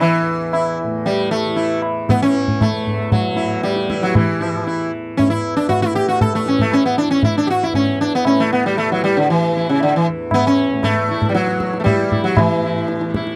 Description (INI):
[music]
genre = indian classical, Hindustani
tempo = 116 BPM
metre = 4/4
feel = straight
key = E raga bageshri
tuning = A4 = 440 Hz
[part]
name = sitar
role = melody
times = 0.0-13.4 s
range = C#3 to A4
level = -19 LUFS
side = equal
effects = none
[part]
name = tanpura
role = drone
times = 0.0-13.4 s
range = E2 to E3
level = -27 LUFS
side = equal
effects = none
[part]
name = tabla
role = percussion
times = 0.0-13.4 s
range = none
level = -23 LUFS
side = equal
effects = none
[sound]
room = little or no reverb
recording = dry, close 1970s-style studio recording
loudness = -17 LUFS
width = mono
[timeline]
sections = 0.0-12.4 A section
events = none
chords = none